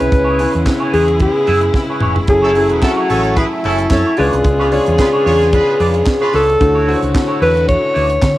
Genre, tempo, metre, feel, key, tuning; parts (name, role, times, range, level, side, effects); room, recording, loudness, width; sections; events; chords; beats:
disco; 111 BPM; 4/4; swing 56% on 16ths; A4 = 438 Hz
breathy alto saxophone; melody; 0.0-8.4 s; E4 to C#5; -15 LUFS; left 1 dB; cassette tape, tape echo
clean electric guitar; accompaniment; 0.0-8.2 s; A3 to E5; -22 LUFS; right 2 dB; wah
clear concert grand piano; accompaniment; 0.0-8.4 s; C#3 to C#5; -20 LUFS; left 2 dB
clear studio string section; sustained chords; 0.0-8.4 s; C#3 to G#5; -26 LUFS; right 1 dB
hollow-body short-scale fingered electric bass; bass; 0.0-8.3 s; E1 to D3; -18 LUFS; equal
tight funk drum kit; drums; 0.0-8.4 s; handclaps, hi-hat, kick drum, snare drum, toms; -18 LUFS; equal; cassette tape
warm horn section; stabs; 2.4-6.4 s; C#4 to C#5; -21 LUFS; right 1 dB
moderate studio ambience, RT60 0.5 s; home recording on cassette; -11 LUFS; side -16 dB against mid
0.0-8.4 A section
drum fill 1.7-2.3
0.0 C#m7; 2.3 F#m9; 4.2 C#7b9; 6.6 Dmaj9
| 0.12 0.66 1.20 1.74 | 2.28 2.82 3.36 3.90 | 4.44 4.98 5.52 6.06 | 6.61 7.14 7.68 8.22